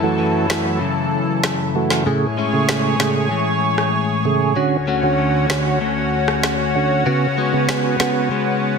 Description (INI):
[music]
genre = dancehall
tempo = 96 BPM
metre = 4/4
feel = straight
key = F# minor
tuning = A4 = 440 Hz
[part]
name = mellow tonewheel organ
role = accompaniment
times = 0.0-8.3 s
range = C#3 to G#4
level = -20 LUFS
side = right 5 dB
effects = overdrive, chorus vibrato, slow rotary speaker
[part]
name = lush unison pad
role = sustained chords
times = 0.0-8.8 s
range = D2 to C#5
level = -21 LUFS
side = equal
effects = chorus
[part]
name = direct-recorded clean electric guitar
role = arpeggios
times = 0.0-8.8 s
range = F#2 to F#4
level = -22 LUFS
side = left 7 dB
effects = none
[part]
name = electronic snare drum and rim click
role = drums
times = 0.5-8.2 s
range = none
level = -23 LUFS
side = equal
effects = none
[sound]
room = light reverb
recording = dense, heavily limited modern master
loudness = -16 LUFS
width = side -5 dB against mid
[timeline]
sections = 0.0-8.8 A section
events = none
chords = 0.0 F#m7; 2.1 Amaj7; 4.6 Dmaj7; 7.1 C#7sus4